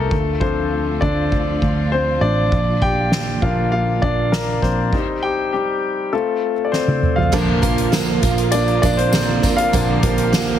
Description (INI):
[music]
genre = piano-driven pop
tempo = 100 BPM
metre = 4/4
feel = straight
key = Bb major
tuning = A4 = 440 Hz
[part]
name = clear concert grand piano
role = accompaniment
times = 0.0-10.6 s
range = F3 to G5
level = -19 LUFS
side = left 3 dB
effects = none
[part]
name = dark studio string section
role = sustained chords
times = 0.0-10.6 s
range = D3 to G4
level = -28 LUFS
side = right 2 dB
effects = none
[part]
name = vintage muted picked electric bass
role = bass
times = 0.0-10.6 s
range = A1 to D2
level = -22 LUFS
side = right 1 dB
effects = none
[part]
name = soft-mallet drum kit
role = drums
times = 0.1-10.5 s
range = crash cymbal, hi-hat, kick drum, snare drum, toms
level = -21 LUFS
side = equal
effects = none
[part]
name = picked steel-string acoustic guitar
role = riff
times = 7.3-10.6 s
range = Bb2 to Bb4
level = -20 LUFS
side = right 7 dB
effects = none
[part]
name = tambourine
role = percussion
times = 7.3-10.5 s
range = none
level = -33 LUFS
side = left 3 dB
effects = none
[sound]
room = light reverb, small room ambience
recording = heavily compressed radio sound, multiband compression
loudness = -16 LUFS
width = side -10 dB against mid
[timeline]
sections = 0.0-7.3 A section; 7.3-10.6 B section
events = grand piano solo 0.0-7.3, 7.3-10.6; drum fill 6.7-7.3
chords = 0.1 Dm; 2.5 Bb; 4.9 Cm; 6.1 F; 7.3 Bb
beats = | 0.11 0.71 1.31 1.92 | 2.52 3.12 3.72 4.32 | 4.92 5.53 6.13 6.73 | 7.33 7.93 8.53 9.13 | 9.73 10.33